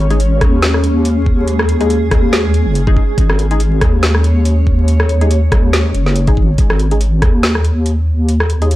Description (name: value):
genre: deep dubstep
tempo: 141 BPM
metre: 4/4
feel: swing 56% on 16ths, half-time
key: unclear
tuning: A4 = 441 Hz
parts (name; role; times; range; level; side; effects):
- granular cloud pad; sustained chords; 0.0-6.6 s; G#3 to C#5; -21 LUFS; equal; built-in reverb
- deep soft wobble bass; bass; 0.0-8.8 s; F#1 to D#2; -13 LUFS; equal; chorus, transformer saturation
- filtered dub chord stab; stabs; 0.1-8.7 s; G#3 to G#4; -24 LUFS; left 3 dB; wide subtle chorus, vintage 12-bit sampler grit, dub echo
- garage drum kit; drums; 0.1-8.8 s; hi-hat, rim click, snare drum; -18 LUFS; equal; none
- electronic kick drum; drums; 0.4-7.3 s; none; -13 LUFS; equal; none
room: little or no reverb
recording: dry, gritty hardware recording, vinyl crackle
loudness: -11 LUFS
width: side -16 dB against mid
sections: 0.0-6.6 A section; 6.6-8.8 A section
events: drop 0.0-6.6, 6.6-8.8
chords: 0.0 G#5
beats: 0.20 0.62 1.05 | 1.48 1.90 2.33 2.75 | 3.18 3.60 4.03 4.46 | 4.88 5.31 5.73 6.16 | 6.58 7.01 7.43 7.86 | 8.29 8.71